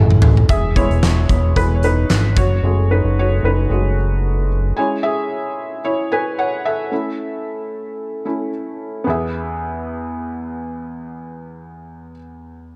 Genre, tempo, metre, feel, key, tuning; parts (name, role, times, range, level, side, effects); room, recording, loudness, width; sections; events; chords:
piano-driven pop; 112 BPM; 4/4; swing 56% on 16ths; E major; A4 = 438 Hz
felt-muted upright piano; accompaniment; 0.0-12.8 s; E2 to G#5; -24 LUFS; equal
fat analog bass; bass; 0.0-4.7 s; E1 to A1; -18 LUFS; equal
huge arena drum kit; drums; 0.1-2.5 s; handclaps, hi-hat, kick drum, snare drum, toms; -19 LUFS; equal
studio ambience; dark, warm production; -18 LUFS; mono
0.5-9.1 A section; 9.1-12.8 B section
drum fill 0.0-0.5; felt piano solo 0.5-9.1
0.5 E; 2.4 F#madd9; 4.8 C#m/G#; 6.9 A; 9.1 E